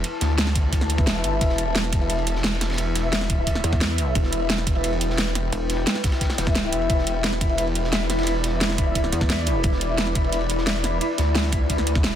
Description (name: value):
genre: dark technical drum and bass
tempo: 175 BPM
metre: 4/4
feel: straight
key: E minor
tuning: A4 = 441 Hz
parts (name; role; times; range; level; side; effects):
- deep dark ambient pad; sustained chords; 0.0-12.2 s; E4 to A5; -28 LUFS; left 2 dB; chorus, built-in reverb, sidechain pumping
- snarling distorted saw bass; bass; 0.0-12.2 s; E1 to D2; -25 LUFS; equal; distortion, overdrive
- crunchy breakbeat drum kit; drums; 0.0-12.2 s; ride cymbal, snare drum; -34 LUFS; equal; high-pass filter on cymbals, high-pass filter on snare, high-pass filter on room
- dubstep drum kit; drums; 0.0-12.1 s; hi-hat, snare drum; -25 LUFS; right 1 dB; none
- electronic kick drum; drums; 0.6-12.0 s; none; -23 LUFS; equal; none
- mellow brass ensemble; stabs; 1.0-10.4 s; E4 to E5; -29 LUFS; left 2 dB; vintage 12-bit sampler grit, digital delay
- pulsing pluck wobble bass; bass; 3.6-5.9, 9.1-9.6 s; E1 to E2; -24 LUFS; equal; chorus
- mellow electric guitar; arpeggios; 6.9-12.1 s; E4 to E5; -31 LUFS; right 1 dB; sidechain pumping, digital delay
room: small room ambience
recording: dense, heavily limited modern master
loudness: -20 LUFS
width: side -10 dB against mid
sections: 0.0-12.2 A section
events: none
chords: 0.0 E5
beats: | 0.04 0.38 0.73 1.07 | 1.41 1.75 2.10 2.44 | 2.78 3.13 3.47 3.81 | 4.15 4.50 4.84 5.18 | 5.53 5.87 6.21 6.55 | 6.90 7.24 7.58 7.93 | 8.27 8.61 8.95 9.30 | 9.64 9.98 10.33 10.67 | 11.01 11.35 11.70 12.04